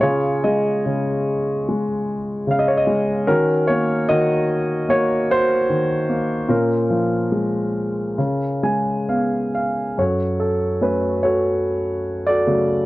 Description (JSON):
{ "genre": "classical, lyrical solo piano", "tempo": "73 BPM", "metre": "4/4", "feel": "rubato", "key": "unclear", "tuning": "A4 = 439 Hz", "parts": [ { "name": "warm concert grand piano", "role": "solo", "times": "0.0-12.9 s", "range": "F#2 to Ab5", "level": "-17 LUFS", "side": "equal", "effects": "none" } ], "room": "light reverb", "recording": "worn, warbling old tape, cassette tape, warbly pitch drift", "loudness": "-18 LUFS", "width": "side -18 dB against mid", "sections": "0.0-10.0 A section; 10.0-12.9 B section", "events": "grand piano fill 8.2-10.0", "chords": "0.0 Dbadd9; 3.3 Ebm7; 6.5 Bbm7; 8.2 Db7; 10.0 F#m" }